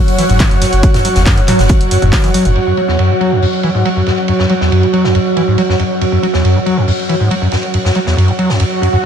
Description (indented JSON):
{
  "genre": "driving peak-time techno",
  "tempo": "139 BPM",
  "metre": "4/4",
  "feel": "straight",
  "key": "unclear",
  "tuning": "A4 = 440 Hz",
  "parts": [
    { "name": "metallic inharmonic drone", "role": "drone", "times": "0.0-9.0 s", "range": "F#3", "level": "-18 LUFS", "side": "right 2 dB", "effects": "chorus, built-in reverb, sidechain pumping" },
    { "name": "granular cloud pad", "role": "texture", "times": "0.0-9.0 s", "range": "F#4 to F#5", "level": "-18 LUFS", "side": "right 1 dB", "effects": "built-in reverb, sidechain pumping" },
    { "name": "saturated sub bass", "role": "bass", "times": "0.1-2.6 s", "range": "F#1", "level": "-17 LUFS", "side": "equal", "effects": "sidechain pumping, low-pass filter" },
    { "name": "punchy analog drum machine", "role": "drums", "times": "0.1-2.5 s", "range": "handclaps, hi-hat, toms", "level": "-20 LUFS", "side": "equal", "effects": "none" },
    { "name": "street-band drum kit", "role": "drums", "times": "0.1-8.9 s", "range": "hi-hat, ride cymbal, snare drum", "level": "-23 LUFS", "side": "right 1 dB", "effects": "sidechain pumping on cymbals, high-pass filter on cymbals, low-pass filter on cymbals, sidechain pumping on hats, high-pass filter on hats, low-pass filter on hats, high-pass filter on snare, low-pass filter on snare, high-pass filter on room, low-pass filter on room" },
    { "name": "overdriven acid bass", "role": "riff", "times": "0.2-9.1 s", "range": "E2 to F#3", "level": "-14 LUFS", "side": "equal", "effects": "wide subtle chorus, cassette tape, sidechain pumping, tape echo" },
    { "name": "electronic kick drum", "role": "drums", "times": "0.4-2.2 s", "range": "none", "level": "-12 LUFS", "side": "equal", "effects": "overdrive" },
    { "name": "swell", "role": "sound effects", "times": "8.7-9.1 s", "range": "none", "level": "-16 LUFS", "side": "right 4 dB", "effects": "none" }
  ],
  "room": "light reverb",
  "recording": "none",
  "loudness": "-10 LUFS",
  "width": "side -8 dB against mid",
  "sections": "0.0-2.6 A section; 2.6-9.1 B section",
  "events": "drop 0.0-2.6; swell 8.7-9.1",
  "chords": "0.0 F#5",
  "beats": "0.40 | 0.83 1.26 1.70 2.13 | 2.56 2.99 3.42 3.85 | 4.29 4.72 5.15 5.58 | 6.01 6.44 6.88 7.31 | 7.74 8.17 8.60 9.03"
}